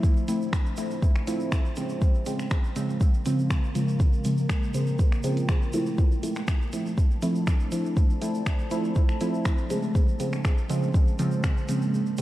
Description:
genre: dub techno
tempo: 121 BPM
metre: 4/4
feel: straight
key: D minor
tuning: A4 = 439 Hz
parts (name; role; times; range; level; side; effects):
- deep dark ambient pad; sustained chords; 0.0-12.2 s; Ab3 to A5; -35 LUFS; right 2 dB; chorus, built-in reverb, sidechain pumping
- deep mellow chord stab; stabs; 0.0-12.2 s; C#3 to E4; -27 LUFS; equal; chorus, phaser, sidechain pumping, dub echo
- electronic kick drum; drums; 0.0-11.5 s; none; -22 LUFS; equal; none
- tube shaker; percussion; 0.0-12.2 s; none; -46 LUFS; right 2 dB; none
- punchy analog drum machine; drums; 0.3-12.2 s; finger snaps, hi-hat; -37 LUFS; equal; none
room: moderate cathedral reverb, RT60 3.9 s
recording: dreamy mix soaked in reverb, vinyl crackle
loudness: -23 LUFS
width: side -15 dB against mid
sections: 0.0-12.2 A section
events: kick drops out 11.9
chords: 0.0 Dm7; 2.0 Bbm7; 6.0 Dm7; 9.9 Bbm7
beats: | 0.03 0.53 1.02 1.52 | 2.02 2.51 3.01 3.50 | 4.00 4.50 4.99 5.49 | 5.98 6.48 6.97 7.47 | 7.97 8.46 8.96 9.45 | 9.95 10.45 10.94 11.44 | 11.93

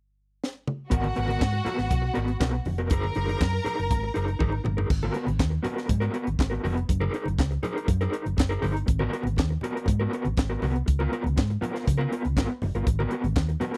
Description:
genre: disco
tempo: 120 BPM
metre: 4/4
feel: straight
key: G# dorian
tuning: A4 = 441 Hz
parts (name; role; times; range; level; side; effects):
- tight funk drum kit; drums; 0.4-13.8 s; crash cymbal, handclaps, hi-hat, kick drum, snare drum, toms; -28 LUFS; equal; none
- clear symphonic string section; second line; 0.9-4.6 s; F#4 to A#5; -34 LUFS; equal; none
- electric guitar at the edge of break-up; accompaniment; 0.9-13.8 s; B3 to A#4; -32 LUFS; equal; tremolo
- hollow-body short-scale fingered electric bass; bass; 0.9-13.5 s; E#1 to C#3; -29 LUFS; equal; none
- congas; percussion; 0.9-13.7 s; none; -38 LUFS; equal; none
room: little or no reverb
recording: dry, close 1970s-style studio recording, faint mains hum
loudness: -26 LUFS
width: mono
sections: 0.9-4.9 A section; 4.9-13.8 B section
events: drum fill 0.4-0.9, 4.4-4.9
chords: 0.0 N.C.; 0.9 G#m9; 2.9 F#69; 4.9 G#m9; 6.9 F#69; 8.9 G#m9; 10.9 C#6; 12.9 G#m9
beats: 0.42 | 0.92 1.42 1.92 2.41 | 2.91 3.41 3.90 4.40 | 4.90 5.40 5.89 6.39 | 6.89 7.39 7.89 8.38 | 8.88 9.38 9.88 10.38 | 10.88 11.38 11.88 12.37 | 12.87 13.37

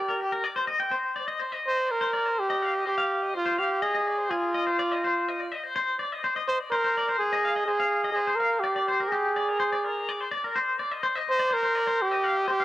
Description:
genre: rock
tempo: 125 BPM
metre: 5/4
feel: straight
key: C minor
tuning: A4 = 437 Hz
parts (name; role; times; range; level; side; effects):
- breathy trumpet; melody; 0.0-12.6 s; F4 to C5; -26 LUFS; right 1 dB; cassette tape
- twangy electric guitar; arpeggios; 0.0-12.6 s; G4 to G5; -28 LUFS; left 2 dB; tremolo, cassette tape, analog delay
room: moderate spring reverb, RT60 2.4 s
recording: home recording on cassette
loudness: -24 LUFS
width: side -15 dB against mid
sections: 0.9-12.6 A section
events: none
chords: 0.0 Cm7; 3.3 Ab6; 5.8 Fm7; 8.2 Bb7; 10.6 Cm7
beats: 0.45 | 0.93 1.42 1.90 2.38 2.86 | 3.34 3.83 4.31 4.79 5.27 | 5.75 6.24 6.72 7.20 7.68 | 8.16 8.64 9.12 9.60 10.09 | 10.57 11.05 11.53 12.01 12.49

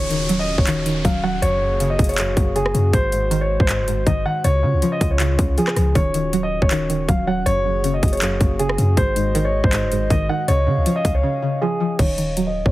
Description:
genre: hip hop, trap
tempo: 159 BPM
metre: 4/4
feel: half-time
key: Eb dorian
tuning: A4 = 439 Hz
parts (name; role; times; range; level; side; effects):
- dark concert grand piano; melody; 0.0-12.7 s; Ab4 to Gb5; -23 LUFS; equal; low-pass filter
- string-like resonator pluck; accompaniment; 0.0-12.7 s; Gb2 to Gb3; -23 LUFS; right 1 dB; chorus, low-pass filter
- dark analog pad; sustained chords; 0.0-12.0 s; Db3 to F5; -29 LUFS; left 2 dB; chorus
- warm 808-style bass; bass; 0.0-12.7 s; Eb1 to Db3; -22 LUFS; equal; none
- downlifter; sound effects; 0.0-2.9 s; none; -31 LUFS; equal; none
- trap drum kit; drums; 0.1-12.7 s; crash cymbal, handclaps, hi-hat, kick drum, rim click; -20 LUFS; equal; overdrive
room: digital ambience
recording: heavily compressed radio sound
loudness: -16 LUFS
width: side -17 dB against mid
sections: 0.0-12.0 A section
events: break 11.2-12.0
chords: 0.0 Ebm7; 1.4 Gbadd9; 2.9 Ab7; 4.4 Db; 6.0 Ebm7; 7.5 Gbadd9; 9.0 Ab7; 10.5 Db; 12.0 Ebm7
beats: 0.29 0.67 1.05 | 1.43 1.80 2.18 2.56 | 2.93 3.31 3.69 4.07 | 4.44 4.82 5.20 5.58 | 5.95 6.33 6.71 7.08 | 7.46 7.84 8.22 8.60 | 8.97 9.35 9.73 10.10 | 10.48 10.86 11.24 11.61 | 11.99 12.37

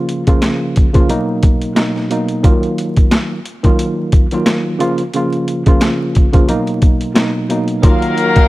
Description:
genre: hip hop, boom-bap hip-hop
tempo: 89 BPM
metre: 4/4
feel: swing 56% on 16ths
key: Eb minor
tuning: A4 = 440 Hz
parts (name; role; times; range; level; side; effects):
- tine electric piano; accompaniment; 0.0-8.5 s; B2 to F4; -16 LUFS; right 1 dB; overdrive, fast stereo tremolo, cassette tape, high-pass filter, low-pass filter
- boom bap sampler-style drum kit; drums; 0.1-8.5 s; hi-hat, kick drum, snare drum; -12 LUFS; equal; vintage 12-bit sampler grit
- warm studio string section; sustained chords; 7.8-8.5 s; Gb3 to F5; -21 LUFS; equal; high-pass filter, low-pass filter
- clear horn section; stabs; 7.8-8.5 s; Bb3 to Bb4; -15 LUFS; left 4 dB; high-pass filter, low-pass filter
room: light reverb, small room ambience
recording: vinyl crackle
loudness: -12 LUFS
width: side -18 dB against mid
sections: 0.0-7.8 A section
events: none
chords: 0.0 Bbm; 1.1 Bmaj7; 2.4 Ebmadd9; 4.8 Bbm; 6.5 Bmaj7; 7.8 Ebmadd9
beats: 0.42 1.09 1.77 | 2.44 3.12 3.79 4.46 | 5.14 5.81 6.49 7.16 | 7.84

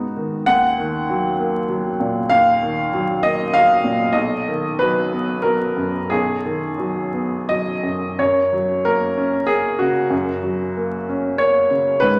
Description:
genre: neoclassical minimalist piano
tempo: 83-99 BPM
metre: 3/4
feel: rubato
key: F# major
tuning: A4 = 440 Hz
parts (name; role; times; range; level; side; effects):
- clear upright piano; solo; 0.0-12.2 s; B1 to F#5; -19 LUFS; equal; none
room: wet large studio reverb, RT60 1.3 s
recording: vinyl crackle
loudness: -19 LUFS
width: mono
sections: 0.0-8.2 A section; 8.2-12.2 B section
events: none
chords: 0.5 D#m; 4.2 B6; 8.2 F#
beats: | 0.46 1.07 1.69 | 2.31 2.93 3.54 | 4.16 4.80 5.45 | 6.11 6.79 7.50 | 8.18 8.84 9.48 | 10.12 10.75 11.40 | 12.03

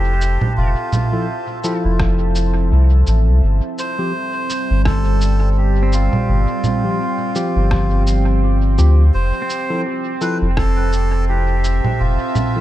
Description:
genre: ambient dub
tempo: 84 BPM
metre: 4/4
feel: swing 57% on 16ths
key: unclear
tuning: A4 = 440 Hz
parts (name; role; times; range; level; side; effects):
- melodica; melody; 0.0-12.6 s; E4 to C5; -25 LUFS; equal; dub echo
- deep dark ambient pad; sustained chords; 0.0-12.6 s; G3 to A5; -25 LUFS; right 2 dB; chorus, built-in reverb
- pedal steel guitar; arpeggios; 0.0-0.7, 5.8-11.1 s; C4 to C5; -32 LUFS; right 3 dB; dub echo
- soft dub sub bass; bass; 0.0-12.2 s; F1 to D2; -14 LUFS; equal; none
- electronic cabasa, congas and rim click; drums; 0.2-12.5 s; none; -22 LUFS; right 2 dB; studio reverb, dub echo
- tine electric piano; stabs; 1.1-12.6 s; F3 to A4; -25 LUFS; left 1 dB; dub echo
- electronic kick drum; drums; 2.0-10.7 s; none; -22 LUFS; equal; none
room: little or no reverb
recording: echo-heavy mix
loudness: -14 LUFS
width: side -14 dB against mid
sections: 0.0-12.6 A section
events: none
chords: 0.0 Fmaj7; 3.4 G7sus4; 9.1 Fmaj7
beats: | 0.57 1.29 2.00 2.71 | 3.43 4.14 4.86 5.57 | 6.29 7.00 7.71 8.43 | 9.14 9.86 10.57 11.29 | 12.00

